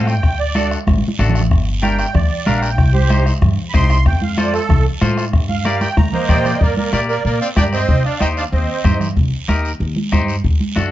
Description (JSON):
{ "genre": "latin, cumbia", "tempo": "188 BPM", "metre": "4/4", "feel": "straight", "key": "G minor", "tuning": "A4 = 440 Hz", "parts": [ { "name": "musette accordion", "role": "melody", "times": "0.0-9.0 s", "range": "G4 to C6", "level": "-21 LUFS", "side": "right 5 dB", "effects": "plate reverb" }, { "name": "clean electric guitar", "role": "accompaniment", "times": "0.0-10.9 s", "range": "C4 to D5", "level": "-22 LUFS", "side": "left 3 dB", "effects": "none" }, { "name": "upright bass", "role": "bass", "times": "0.0-10.9 s", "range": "G1 to Bb2", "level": "-18 LUFS", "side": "equal", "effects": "none" }, { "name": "bombo", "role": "percussion", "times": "0.1-10.9 s", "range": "none", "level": "-19 LUFS", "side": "left 1 dB", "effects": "none" }, { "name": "guiro", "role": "percussion", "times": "0.1-10.9 s", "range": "none", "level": "-32 LUFS", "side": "right 6 dB", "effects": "none" }, { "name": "congas", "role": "percussion", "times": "0.6-10.9 s", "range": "none", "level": "-22 LUFS", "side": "right 2 dB", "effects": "none" }, { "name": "brilliant trumpet", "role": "second line", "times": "6.1-9.0 s", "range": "Bb3 to Eb4", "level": "-25 LUFS", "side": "left 4 dB", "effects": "none" } ], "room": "light reverb", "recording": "dark, warm production, nothing above 7.7 kHz", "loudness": "-14 LUFS", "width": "side -14 dB against mid", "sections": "0.0-6.6 A section; 6.6-10.9 B section", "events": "accordion solo 0.0-6.6; drum fill 0.9-1.5, 5.7-6.6", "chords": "0.2 D; 1.5 Gm; 2.8 Cm; 4.1 F; 5.3 Gm; 7.9 Cm" }